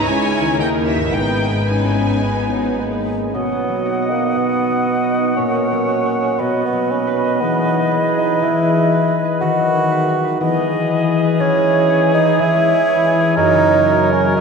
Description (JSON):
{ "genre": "classical", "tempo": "107-123 BPM", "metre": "4/4", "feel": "rubato", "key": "G# minor, B major from 3.3 s", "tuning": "A4 = 440 Hz", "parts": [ { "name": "warm symphonic violin section", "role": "melody", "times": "0.0-2.8 s", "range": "E5 to G#5", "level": "-25 LUFS", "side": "left 1 dB", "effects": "none" }, { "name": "clear symphonic violin section", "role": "second line", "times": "0.0-3.1 s", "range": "A#4 to C#5", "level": "-28 LUFS", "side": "left 1 dB", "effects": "none" }, { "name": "mellow French horn section", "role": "sustained chords", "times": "0.0-14.4 s", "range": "D#3 to E4", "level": "-21 LUFS", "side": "right 1 dB", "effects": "stereo widening" }, { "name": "concert harp", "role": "arpeggios", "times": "0.0-14.4 s", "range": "F#2 to D#5", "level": "-22 LUFS", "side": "left 4 dB", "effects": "none" }, { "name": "clear symphonic double bass section", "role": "bass", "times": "0.0-3.1 s", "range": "G#1 to D#2", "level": "-25 LUFS", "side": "left 1 dB", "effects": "none" }, { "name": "rich symphonic cello section", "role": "bass", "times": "0.0-3.1 s", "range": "C#2 to G#2", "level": "-25 LUFS", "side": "equal", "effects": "none" }, { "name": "rich symphonic viola section", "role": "accompaniment", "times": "0.1-3.1 s", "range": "A#3 to E4", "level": "-27 LUFS", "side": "right 1 dB", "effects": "none" }, { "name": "warm bassoon", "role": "accompaniment", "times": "2.5-14.4 s", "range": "F#3 to F#4", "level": "-19 LUFS", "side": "right 4 dB", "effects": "none" }, { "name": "mellow cor anglais", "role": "second line", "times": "3.3-14.4 s", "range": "G#4 to D#5", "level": "-24 LUFS", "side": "right 3 dB", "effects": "none" }, { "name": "silver concert flute", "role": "second line", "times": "3.3-14.4 s", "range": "C#5 to F#5", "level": "-23 LUFS", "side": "left 2 dB", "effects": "none" }, { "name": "warm clarinet", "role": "second line", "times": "3.3-14.4 s", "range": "E4 to G#4", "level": "-26 LUFS", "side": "left 2 dB", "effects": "none" } ], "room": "wet cathedral reverb, RT60 7.7 s", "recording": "in a vast, echoing space, nothing above 10.3 kHz", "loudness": "-14 LUFS", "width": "side -5 dB against mid", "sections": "0.0-3.3 A section; 3.3-14.4 B section", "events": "none", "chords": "0.1 C#m; 0.6 D#5; 1.1 G#m; 3.3 B; 5.4 F#/A#; 6.4 B; 7.4 Emaj7; 9.4 B/D#; 10.4 Emaj7; 11.4 C#m/E; 13.4 F#", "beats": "0.06 0.59 | 1.14 1.69 2.24 2.79 | 3.34 3.86 4.37 4.88 | 5.38 5.89 6.39 6.90 | 7.41 7.91 8.42 8.92 | 9.42 9.92 10.41 10.90 | 11.40 11.90 12.39 12.88 | 13.37 13.87 14.37" }